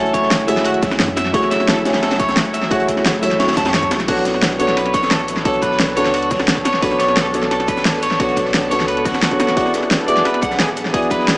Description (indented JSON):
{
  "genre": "liquid drum and bass",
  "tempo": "175 BPM",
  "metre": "4/4",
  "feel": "straight",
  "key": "unclear",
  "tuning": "A4 = 439 Hz",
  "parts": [
    { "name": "dark concert grand piano", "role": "accompaniment", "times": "0.0-11.4 s", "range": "A3 to G#5", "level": "-19 LUFS", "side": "equal", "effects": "tape echo" },
    { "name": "shimmering ambient pad", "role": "sustained chords", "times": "0.2-11.4 s", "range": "F#3 to C#5", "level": "-26 LUFS", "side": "equal", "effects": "chorus, built-in reverb, phaser, sidechain pumping" },
    { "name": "electric guitar at the edge of break-up", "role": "arpeggios", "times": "0.0-11.3 s", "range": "F#4 to A5", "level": "-20 LUFS", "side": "equal", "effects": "tape echo" },
    { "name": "warm sub bass", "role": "bass", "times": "0.0-11.4 s", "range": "D1 to F#2", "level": "-33 LUFS", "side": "equal", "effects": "none" },
    { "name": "crunchy breakbeat drum kit", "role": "drums", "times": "0.1-11.4 s", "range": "hi-hat, snare drum", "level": "-24 LUFS", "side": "equal", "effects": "high-pass filter on hats, studio reverb, high-pass filter on snare, high-pass filter on room, tape echo" },
    { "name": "electronic kick drum", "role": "drums", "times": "0.1-11.2 s", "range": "none", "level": "-24 LUFS", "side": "equal", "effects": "studio reverb" },
    { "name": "pop drum kit", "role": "drums", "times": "0.1-11.4 s", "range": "crash cymbal, hi-hat, shaker, snare drum", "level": "-20 LUFS", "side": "equal", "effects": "studio reverb, tape echo" }
  ],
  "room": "moderate spring reverb, RT60 1.1 s, small room ambience",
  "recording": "echo-heavy mix, small speaker sound",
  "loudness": "-14 LUFS",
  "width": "side -24 dB against mid",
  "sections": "0.0-11.4 A section",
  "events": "none",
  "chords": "0.0 F#m7; 3.9 Bm9; 9.6 E9",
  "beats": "0.31 0.65 1.00 | 1.34 1.68 2.03 2.37 | 2.71 3.05 3.40 3.74 | 4.08 4.43 4.77 5.11 | 5.45 5.80 6.14 6.48 | 6.83 7.17 7.51 7.85 | 8.20 8.54 8.88 9.23 | 9.57 9.91 10.25 10.60 | 10.94 11.28"
}